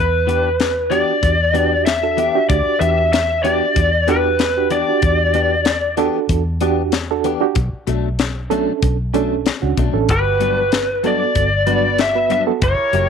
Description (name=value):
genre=straight-eighth soul blues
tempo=95 BPM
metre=4/4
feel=swing 54% on 16ths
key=unclear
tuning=A4 = 439 Hz
part: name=lead guitar through a small cranked amp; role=melody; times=0.0-5.9, 10.1-13.1 s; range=B4 to E5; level=-17 LUFS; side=left 2 dB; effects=overdrive
part: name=vintage muted fingered electric bass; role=bass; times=0.0-13.1 s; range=F#1 to E2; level=-21 LUFS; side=equal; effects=none
part: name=direct-recorded clean electric guitar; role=stabs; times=0.3-13.1 s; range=G2 to G4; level=-23 LUFS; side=left 13 dB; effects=ensemble chorus
part: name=tight funk drum kit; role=drums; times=0.3-13.1 s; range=hi-hat, kick drum, snare drum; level=-20 LUFS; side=left 4 dB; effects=none
part: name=reed electric piano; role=accompaniment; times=0.9-12.6 s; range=B3 to B4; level=-20 LUFS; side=right 16 dB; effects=fast tremolo
part: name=bright horn section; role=sustained chords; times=10.1-13.1 s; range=G3 to D5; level=-30 LUFS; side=equal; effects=none
room=light reverb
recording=1960s-style stereo with parts hard left and right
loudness=-15 LUFS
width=side -7 dB against mid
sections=0.0-13.1 A section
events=none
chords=0.0 Em7; 7.6 Bm7; 10.1 Gmaj7